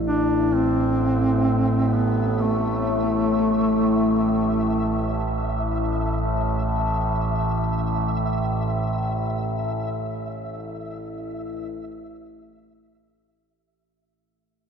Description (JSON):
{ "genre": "dark ambient drone", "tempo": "free time", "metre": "none", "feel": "none", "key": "A minor", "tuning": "A4 = 440 Hz", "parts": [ { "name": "overtone-sweeping drone", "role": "drone", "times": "0.0-13.8 s", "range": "A1 to A2", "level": "-23 LUFS", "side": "equal", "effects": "chorus, built-in reverb, phaser" }, { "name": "flickering grainy texture", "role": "texture", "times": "0.0-13.7 s", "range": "E5", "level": "-36 LUFS", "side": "equal", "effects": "built-in reverb" }, { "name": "mellow duduk", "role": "melody", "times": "0.1-5.2 s", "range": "A3 to D4", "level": "-24 LUFS", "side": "equal", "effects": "tape echo" } ], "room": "wet cathedral reverb, RT60 5.2 s", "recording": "dark, warm production", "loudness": "-20 LUFS", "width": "side -7 dB against mid", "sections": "0.0-13.7 A section", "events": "fade-in on synth texture 0.0-13.7; fade-out 8.7-13.7", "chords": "0.0 A5" }